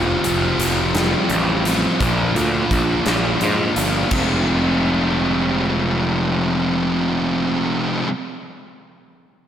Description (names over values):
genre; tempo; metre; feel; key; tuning
quiet-loud alternative rock; 57 BPM (dotted quarters); 6/8; straight; F dorian; A4 = 439 Hz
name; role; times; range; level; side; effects
thick fuzz guitar; riff; 0.0-8.1 s; F2 to F4; -19 LUFS; equal; distortion
fuzz picked electric bass; bass; 0.0-8.0 s; F1 to Ab2; -22 LUFS; equal; overdrive
huge arena drum kit; drums; 0.2-4.3 s; crash cymbal, hi-hat, kick drum, snare drum; -25 LUFS; equal; none
room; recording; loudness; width
moderate lush hall reverb, RT60 2.5 s; big arena sound; -16 LUFS; side -9 dB against mid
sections
0.0-4.1 A section; 4.1-8.3 B section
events
none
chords
0.0 Fsus2; 2.0 Bb; 4.1 Fm